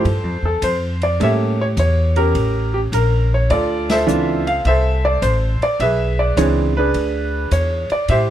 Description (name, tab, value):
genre	jazz piano trio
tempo	104 BPM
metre	4/4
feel	swing 68% on 8ths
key	unclear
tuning	A4 = 439 Hz
part	clear concert grand piano	melody	0.0-8.3 s	E3 to F5	-18 LUFS	right 1 dB	none
part	upright bass	bass	0.0-8.3 s	A1 to A2	-18 LUFS	equal	none
part	open jazz drum kit	drums	0.0-8.3 s	hi-hat, kick drum, ride cymbal, snare drum	-31 LUFS	left 1 dB	none
room	light reverb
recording	none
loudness	-15 LUFS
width	side -11 dB against mid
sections	0.0-8.3 A section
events	band accent 3.8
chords	0.0 Fmaj9; 1.2 A7b9; 3.5 Dm9; 5.8 E7